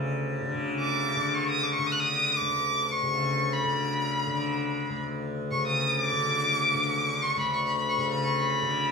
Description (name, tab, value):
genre	indian classical, Hindustani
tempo	free time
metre	none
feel	none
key	unclear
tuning	A4 = 438 Hz
part	tanpura	drone	0.0-8.9 s	D2 to D3	-29 LUFS	left 1 dB	none
part	rich violin	melody	0.8-8.9 s	B5-26c to F#6	-26 LUFS	left 1 dB	none
room	wet large studio reverb, RT60 1.0 s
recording	band playing live in one room, studio reverb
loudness	-25 LUFS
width	side -5 dB against mid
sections	0.5-8.9 A section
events	none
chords	none